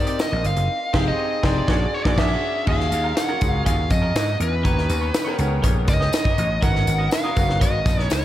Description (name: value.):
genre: polished 1980s jazz-funk pop.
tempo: 121 BPM.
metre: 4/4.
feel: straight.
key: Eb minor.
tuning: A4 = 440 Hz.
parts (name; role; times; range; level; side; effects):
nasal lead guitar with a parked wah; melody; 0.0-8.2 s; Cb5 to Gb5; -25 LUFS; equal; overdrive, slapback echo.
clear grand piano; accompaniment; 0.0-8.2 s; Bb3 to Bb5; -28 LUFS; left 1 dB; lush chorus, slapback echo.
clean electric guitar; riff; 0.1-8.2 s; Gb3 to Eb5; -33 LUFS; right 2 dB; analog chorus, slapback echo.
crisp fusion drum kit; drums; 0.1-8.2 s; crash cymbal, hi-hat, kick drum, snare drum; -22 LUFS; equal; none.
tambourine; percussion; 0.2-8.2 s; none; -40 LUFS; right 5 dB; none.
vintage slap bass; bass; 0.3-8.2 s; F1 to Ab2; -22 LUFS; equal; none.
room: moderate concert hall reverb, RT60 2.6 s.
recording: big arena sound.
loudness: -18 LUFS.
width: side -13 dB against mid.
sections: 0.0-2.7 A section; 2.7-8.2 B section.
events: band accent 0.7-2.7.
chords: 0.0 Abmaj7 (rootless); 0.7 Fm9; 1.7 Bb7alt; 2.7 Ebm11; 4.6 Eb7b13; 6.6 Abm11.